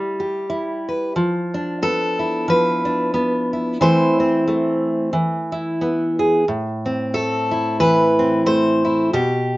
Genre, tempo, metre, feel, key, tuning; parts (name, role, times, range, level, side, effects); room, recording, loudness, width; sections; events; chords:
folk, solo fingerstyle acoustic guitar; 90 BPM; 4/4; swing 56% on 8ths; A minor; A4 = 440 Hz
fingerpicked steel-string acoustic guitar; solo; 0.0-9.6 s; A2 to C5; -17 LUFS; equal
little or no reverb; recorded outdoors, with no room sound, nothing above 7.7 kHz; -17 LUFS; side -18 dB against mid
0.0-9.6 A section
0.0 Em/G; 1.1 Bdim/F; 3.8 Am/E; 5.1 E; 6.5 Am